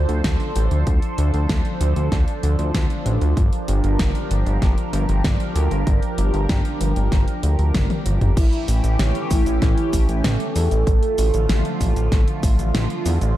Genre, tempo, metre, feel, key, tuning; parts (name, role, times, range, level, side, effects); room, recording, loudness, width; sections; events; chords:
synthwave; 96 BPM; 4/4; straight; D harmonic minor from 8.4 s; A4 = 440 Hz
phased analog pad; sustained chords; 0.0-13.4 s; D3 to C5; -26 LUFS; right 1 dB; phaser, chorus, sidechain pumping, shimmer reverb
fat analog bass; bass; 0.0-13.3 s; G1 to E2; -19 LUFS; equal; sidechain pumping
pop drum kit; drums; 0.1-13.3 s; crash cymbal, hi-hat, shaker, snare drum, toms; -27 LUFS; equal
electronic kick drum; drums; 0.2-12.6 s; -20 LUFS; equal
warm velvety synth lead; melody; 8.4-13.2 s; E4 to A4; -26 LUFS; right 1 dB; chorus, cassette tape, tape echo, shimmer reverb
light reverb, digital ambience; dark, warm production; -17 LUFS; side -14 dB against mid
0.0-8.4 A section; 8.4-13.4 B section
drum fill 7.7-8.4
0.0 Dm7; 3.4 Gm7; 8.4 A7; 10.9 Dm/A